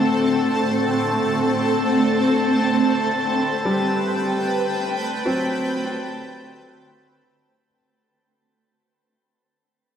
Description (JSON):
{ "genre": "ambient", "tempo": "free time", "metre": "none", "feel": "none", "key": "A dorian", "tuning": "A4 = 440 Hz", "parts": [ { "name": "shimmering ambient pad", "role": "sustained chords", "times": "0.0-7.7 s", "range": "A2 to G5", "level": "-19 LUFS", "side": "equal", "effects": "chorus, built-in reverb, phaser" }, { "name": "felt-muted upright piano", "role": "arpeggios", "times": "0.0-7.8 s", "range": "F#3 to C4", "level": "-26 LUFS", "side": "equal", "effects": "diffuse ambient delay" }, { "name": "drifting glass-harmonics texture", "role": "texture", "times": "0.0-7.7 s", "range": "A5 to A6", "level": "-28 LUFS", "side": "left 2 dB", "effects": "chorus, built-in reverb" } ], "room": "wet shimmer reverb, RT60 7.3 s", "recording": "none", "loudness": "-18 LUFS", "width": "side -8 dB against mid", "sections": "0.0-7.7 A section", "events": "fade-in on felt piano 0.0-7.7; fade-in on synth texture 0.0-7.7; fade-out 3.4-7.7", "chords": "0.0 D7/A; 1.3 Am11" }